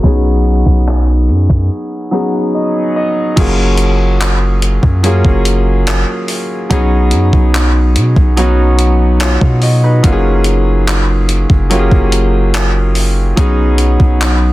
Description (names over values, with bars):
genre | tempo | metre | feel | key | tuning
contemporary R&B | 72 BPM | 4/4 | straight | F# major | A4 = 436 Hz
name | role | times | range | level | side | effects
clear concert grand piano | accompaniment | 0.0-14.5 s | F#3 to A#5 | -14 LUFS | equal | none
long sustained 808-style bass | bass | 0.0-14.5 s | F#1 to B2 | -12 LUFS | equal | none
gated 80s digital drum machine | drums | 0.0-14.4 s | crash cymbal, handclaps, hi-hat, kick drum | -14 LUFS | equal | gated reverb
room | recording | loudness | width
digital ambience | dense, heavily limited modern master, low-pass filter | -9 LUFS | side -17 dB against mid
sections
0.0-3.4 A section; 3.4-14.5 B section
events
filter sweep 0.0-3.4; break 1.7-3.4; grand piano fill 1.7-3.4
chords
0.0 B69; 3.4 F#maj9; 6.7 B69; 10.0 F#maj9; 13.4 B69